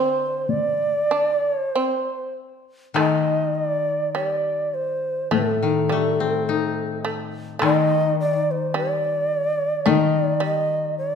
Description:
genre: japanese traditional, Japanese chamber music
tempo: 47-55 BPM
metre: 4/4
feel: rubato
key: D in sen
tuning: A4 = 439 Hz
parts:
  - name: reedy long shakuhachi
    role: melody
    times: 0.0-11.2 s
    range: A4 to Eb5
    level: -22 LUFS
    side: right 2 dB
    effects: none
  - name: shamisen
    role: second line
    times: 0.0-11.2 s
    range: G3 to D4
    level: -28 LUFS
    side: right 4 dB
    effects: none
  - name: koto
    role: accompaniment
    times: 0.0-11.2 s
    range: A2 to Eb4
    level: -24 LUFS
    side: left 8 dB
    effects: none
  - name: taiko ensemble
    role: percussion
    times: 0.5-10.1 s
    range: none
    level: -25 LUFS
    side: left 3 dB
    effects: none
room: moderate scoring stage reverb, RT60 1.6 s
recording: minimal, uncompressed stereo recording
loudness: -19 LUFS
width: side -6 dB against mid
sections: 0.0-3.0 A section; 3.0-11.2 B section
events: none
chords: none

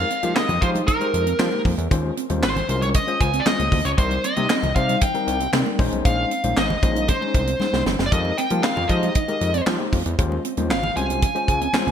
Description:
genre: early-eighties boogie funk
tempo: 116 BPM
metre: 4/4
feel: straight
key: F minor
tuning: A4 = 441 Hz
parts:
  - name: smooth overdriven lead guitar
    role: melody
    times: 0.0-11.9 s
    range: Bb4 to Ab5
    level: -24 LUFS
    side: equal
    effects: digital delay
  - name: overdriven tine electric piano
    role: accompaniment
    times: 0.0-11.9 s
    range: G3 to C5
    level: -27 LUFS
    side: left 4 dB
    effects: fast tremolo
  - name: fat analog bass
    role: bass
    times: 0.0-11.9 s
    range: Gb1 to F3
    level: -24 LUFS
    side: equal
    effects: none
  - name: mellow electric guitar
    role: riff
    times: 0.1-11.9 s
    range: Bb3 to Eb4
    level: -32 LUFS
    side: right 6 dB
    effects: analog chorus
  - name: tight funk drum kit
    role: drums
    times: 0.1-11.9 s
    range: handclaps, hi-hat, kick drum, snare drum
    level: -22 LUFS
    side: equal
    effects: gated reverb
  - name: congas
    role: percussion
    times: 0.2-11.9 s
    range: none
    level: -32 LUFS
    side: left 2 dB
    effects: none
room: light reverb, studio reverb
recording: bright 1980s-style digital production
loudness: -18 LUFS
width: side -8 dB against mid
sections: 0.0-11.9 A section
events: drum fill 7.6-8.1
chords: 0.0 Fm11; 1.9 Eb13sus4; 4.0 Cm7; 5.8 Bbm11; 8.1 Fm11; 10.2 Eb13sus4

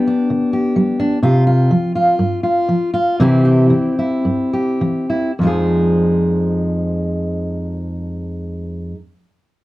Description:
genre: folk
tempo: 52-67 BPM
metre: 4/4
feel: straight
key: F minor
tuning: A4 = 439 Hz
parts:
  - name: fingerpicked steel-string acoustic guitar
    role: accompaniment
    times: 0.0-9.0 s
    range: F2 to Ab4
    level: -14 LUFS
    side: equal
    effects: none
room: moderate small room reverb, RT60 0.5 s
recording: worn, warbling old tape, cassette tape, warbly pitch drift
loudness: -14 LUFS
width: side -17 dB against mid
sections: 0.0-5.4 A section; 5.4-9.6 B section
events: slowing down 0.0-5.4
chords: 0.0 G; 1.2 Csus4; 3.2 C; 5.4 Fm7

